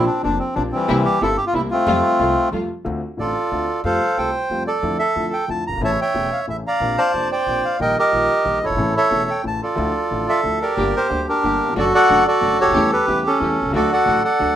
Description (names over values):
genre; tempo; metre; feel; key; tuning
tango; 182 BPM; 3/4; rubato; D minor, G harmonic minor from 10.8 s; A4 = 440 Hz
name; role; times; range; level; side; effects
bandoneon; melody; 0.0-14.6 s; E3 to Bb5; -17 LUFS; right 1 dB; none
warm concert grand piano; accompaniment; 0.0-14.5 s; E1 to G4; -25 LUFS; left 2 dB; none
warm studio string section; stabs; 0.0-2.7, 10.8-14.5 s; G3 to G4; -27 LUFS; right 1 dB; none
upright bass; bass; 0.0-14.6 s; E1 to F2; -30 LUFS; equal; none
room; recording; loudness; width
moderate studio reverb, RT60 0.6 s; rough home demo mix; -16 LUFS; side -10 dB against mid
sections
0.0-2.9 A section; 2.9-10.8 B section; 10.8-14.6 C section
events
none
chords
0.0 Bbadd9; 0.9 C7; 1.9 Fadd9; 2.9 Dm7; 3.8 Fadd9; 4.8 Dmadd9/F; 5.8 A; 6.8 Bbadd9; 7.8 Eb/Bb; 8.8 A; 9.8 Dmadd9; 10.8 Gm; 11.8 D/F#; 12.8 A7/E; 13.7 D